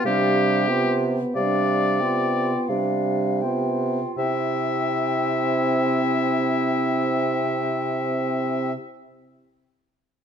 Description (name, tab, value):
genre	classical, slow romantic movement for wind quintet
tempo	39-51 BPM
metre	4/4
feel	rubato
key	C major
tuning	A4 = 440 Hz
part	hollow concert flute	melody	0.0-8.7 s	F5 to G5	-29 LUFS	left 10 dB	none
part	bright oboe	second line	0.0-8.7 s	G4 to E5	-26 LUFS	left 4 dB	none
part	mellow French horn	accompaniment	0.0-8.7 s	G3 to C4	-28 LUFS	equal	none
part	warm clarinet	accompaniment	0.0-8.7 s	D4 to F4	-29 LUFS	right 9 dB	none
part	mellow bassoon	bass	0.1-8.7 s	C3	-25 LUFS	right 4 dB	none
room	moderate recital hall reverb, RT60 1.3 s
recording	none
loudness	-20 LUFS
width	side -7 dB against mid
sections	0.0-4.2 A section; 4.2-10.0 B section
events	slowing down 0.0-4.2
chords	0.0 G7/C; 4.2 C